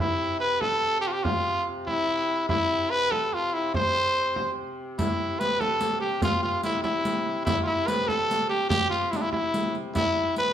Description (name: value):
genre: medieval dance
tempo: 96 BPM (dotted quarters)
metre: 6/8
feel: straight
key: C major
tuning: A4 = 440 Hz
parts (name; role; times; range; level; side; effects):
- growling trumpet; melody; 0.0-10.5 s; D4 to C5; -24 LUFS; equal; none
- rich hurdy-gurdy; drone; 0.0-10.5 s; C3; -37 LUFS; left 1 dB; none
- frame drum; percussion; 0.6-10.1 s; none; -31 LUFS; right 1 dB; none
- riq; percussion; 5.0-10.5 s; none; -32 LUFS; equal; none
room: wet large studio reverb, RT60 1.2 s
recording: band playing live in one room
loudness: -23 LUFS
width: side -10 dB against mid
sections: 0.0-5.0 A section; 5.0-10.5 A section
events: none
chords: none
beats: 0.62 | 1.24 1.87 | 2.49 3.11 | 3.74 4.36 | 4.98 5.60 | 6.22 6.85 | 7.47 8.09 | 8.71 9.33 | 9.95